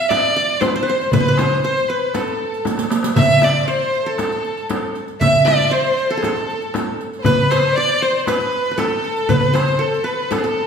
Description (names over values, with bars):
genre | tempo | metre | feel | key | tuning
Arabic maqam ensemble | 118 BPM | 4/4 | straight | A minor | A4 = 444 Hz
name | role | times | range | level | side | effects
rich violin | melody | 0.0-10.7 s | G#4 to E5 | -18 LUFS | equal | none
bright studio violin section | second line | 0.0-10.7 s | A4 to E5 | -25 LUFS | left 1 dB | none
qanun | second line | 0.0-10.7 s | G#4 to E5 | -26 LUFS | right 1 dB | none
darbuka | percussion | 0.1-10.6 s | none | -22 LUFS | right 1 dB | none
frame drum | percussion | 0.1-10.4 s | none | -24 LUFS | left 3 dB | none
riq | percussion | 0.1-10.5 s | none | -27 LUFS | right 4 dB | none
room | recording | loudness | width
wet recital hall reverb, RT60 1.5 s | recorded in a church or concert hall | -15 LUFS | side -6 dB against mid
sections
0.0-10.7 A section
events
drum fill 2.7-3.2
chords
none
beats
0.10 0.61 | 1.12 1.63 2.14 2.65 | 3.17 3.68 4.19 4.70 | 5.21 5.72 6.23 6.74 | 7.25 7.76 8.27 8.78 | 9.29 9.80 10.31